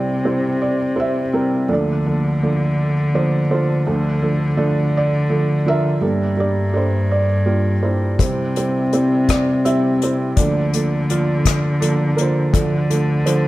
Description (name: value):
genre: acoustic folk-pop ballad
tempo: 55 BPM (dotted quarters)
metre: 6/8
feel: straight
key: unclear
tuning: A4 = 440 Hz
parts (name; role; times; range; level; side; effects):
- felt-muted upright piano; melody; 0.0-13.5 s; G1 to E5; -19 LUFS; right 2 dB; none
- warm cello; bass; 0.0-13.5 s; G2 to D3; -19 LUFS; left 1 dB; none
- unplugged drum kit; drums; 8.2-13.4 s; hi-hat, kick drum, rim click; -20 LUFS; left 2 dB; none
room: light reverb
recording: none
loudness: -16 LUFS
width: side -17 dB against mid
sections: 0.0-13.5 A section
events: none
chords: 0.0 C; 1.7 Bbmaj7/D; 6.0 Gmadd9; 8.2 C; 10.4 Bbmaj7/D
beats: 0.61 | 1.70 2.78 | 3.87 4.95 | 6.03 7.11 | 8.20 9.29 | 10.37 11.45 | 12.54